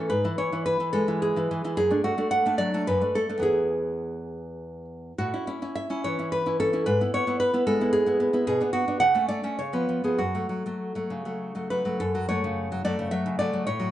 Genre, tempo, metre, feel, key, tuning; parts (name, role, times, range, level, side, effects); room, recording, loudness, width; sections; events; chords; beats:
romantic piece for solo classical guitar; 96-114 BPM; 3/4; rubato; F# minor from 8.5 s; A4 = 440 Hz
nylon-string guitar; solo; 0.0-13.9 s; E2 to F#5; -24 LUFS; equal
moderate large studio reverb, RT60 0.8 s; band playing live in one room, nothing above 10.6 kHz; -23 LUFS; side -12 dB against mid
0.0-12.0 A section; 12.0-13.9 B section
0.1 E/G#; 1.8 D/F#; 3.4 E; 5.2 A; 6.9 E/G#; 8.5 G#dim/B; 9.0 F#m/C#; 9.6 C#7; 10.2 F#m
| 0.11 0.68 1.23 | 1.78 2.33 2.88 | 3.44 4.01 4.60 | 5.19 5.77 6.33 | 6.87 7.40 7.93 | 8.48 9.02 9.59 | 10.19 10.81 11.41 | 12.01 12.58 13.13 | 13.68